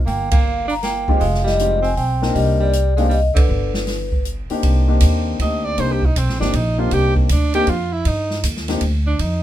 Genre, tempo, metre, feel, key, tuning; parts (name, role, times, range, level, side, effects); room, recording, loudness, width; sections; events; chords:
jazz, small-group swing and bop; 158 BPM; 3/4; swing 65% on 8ths; C minor; A4 = 441 Hz
upright bass; bass; 0.0-9.4 s; F1 to G2; -19 LUFS; equal
vibraphone with soft mallets; melody; 0.1-4.2 s; B4 to Bb5; -22 LUFS; left 2 dB
breathy alto saxophone; second line; 0.1-9.4 s; D3 to Eb5; -23 LUFS; right 3 dB
open jazz drum kit; drums; 0.1-9.3 s; hi-hat, kick drum, ride cymbal, snare drum; -22 LUFS; right 1 dB
warm concert grand piano; accompaniment; 1.1-8.8 s; Ab3 to Bb4; -23 LUFS; left 4 dB
light reverb; minimal, uncompressed stereo recording; -16 LUFS; side -12 dB against mid
0.0-4.6 A section; 4.6-9.4 B section
band accent 0.3, 3.3; alto saxophone solo 4.6-9.4
0.1 Gm7; 1.2 Fm9; 2.4 Cm9; 3.5 G; 4.6 Cm9